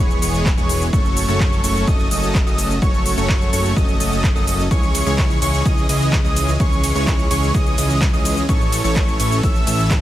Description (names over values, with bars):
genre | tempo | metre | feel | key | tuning
EDM, festival progressive house | 127 BPM | 4/4 | straight | unclear | A4 = 439 Hz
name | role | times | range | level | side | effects
wide unison lead | arpeggios | 0.0-9.9 s | C#6 to E6 | -25 LUFS | equal | sidechain pumping, digital delay
supersaw chords | riff | 0.0-9.9 s | E3 to E5 | -22 LUFS | right 1 dB | sidechain pumping, digital delay
fat analog bass | bass | 0.0-10.0 s | E1 to C#2 | -22 LUFS | equal | sidechain pumping
big-room dance drum kit | drums | 0.1-10.0 s | handclaps, hi-hat, ride cymbal, shaker | -26 LUFS | equal | overdrive
electronic kick drum | drums | 0.5-10.0 s | none | -18 LUFS | equal | overdrive
room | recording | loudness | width
little or no reverb | none | -15 LUFS | side -13 dB against mid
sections
0.0-10.0 A section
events
none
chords
0.0 E; 0.9 F#m; 4.7 C#m; 8.5 A